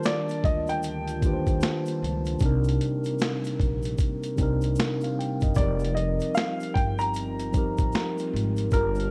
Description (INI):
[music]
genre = lo-fi hip hop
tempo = 76 BPM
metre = 4/4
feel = swing 62% on 16ths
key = unclear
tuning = A4 = 440 Hz
[part]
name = warm upright piano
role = melody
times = 0.0-9.1 s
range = Bb4 to Bb5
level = -32 LUFS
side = equal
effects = low-pass filter
[part]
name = mellow tine electric piano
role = accompaniment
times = 0.0-9.1 s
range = C3 to G5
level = -31 LUFS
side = equal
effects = low-pass filter
[part]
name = glass harmonica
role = sustained chords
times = 0.0-9.1 s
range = G3 to A5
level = -40 LUFS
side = equal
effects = none
[part]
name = tube shaker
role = percussion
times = 0.0-9.1 s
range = none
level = -54 LUFS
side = equal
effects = none
[part]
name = boom bap sampler-style drum kit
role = drums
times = 0.1-9.1 s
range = finger snaps, hi-hat, kick drum, snare drum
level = -30 LUFS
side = equal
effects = none
[part]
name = upright bass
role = bass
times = 0.4-9.1 s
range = F1 to Eb2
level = -31 LUFS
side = equal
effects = none
[sound]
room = light reverb, small room ambience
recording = worn, warbling old tape, cassette tape, warbly pitch drift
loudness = -26 LUFS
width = mono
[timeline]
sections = 0.0-9.1 A section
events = none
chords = 0.0 Ebmaj9#11; 2.4 Cm7; 5.6 F9sus4